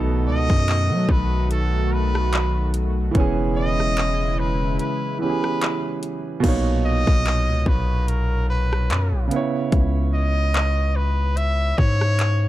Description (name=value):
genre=contemporary R&B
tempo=73 BPM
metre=4/4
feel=swing 54% on 16ths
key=B major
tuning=A4 = 438 Hz
part: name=clear concert grand piano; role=accompaniment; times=0.0-12.5 s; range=A#2 to C#5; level=-26 LUFS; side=right 5 dB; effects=none
part: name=warm analog pad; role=sustained chords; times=0.0-6.4 s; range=C#3 to F#4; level=-29 LUFS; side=left 1 dB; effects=chorus
part: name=long sustained 808-style bass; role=bass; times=0.0-12.5 s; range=E1 to F#3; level=-21 LUFS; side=equal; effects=none
part: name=clear trumpet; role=melody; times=0.3-12.5 s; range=A4 to E5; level=-26 LUFS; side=left 1 dB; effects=none
part: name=trap drum kit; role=drums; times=0.5-12.4 s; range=crash cymbal, handclaps, hi-hat, kick drum, rim click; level=-22 LUFS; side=equal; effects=none
room=digital ambience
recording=dark, warm production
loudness=-18 LUFS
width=side -14 dB against mid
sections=0.0-6.4 A section; 6.4-12.5 A section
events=break 4.8-6.4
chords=0.0 B7; 3.1 E6; 6.4 Bmaj9; 9.3 C#m7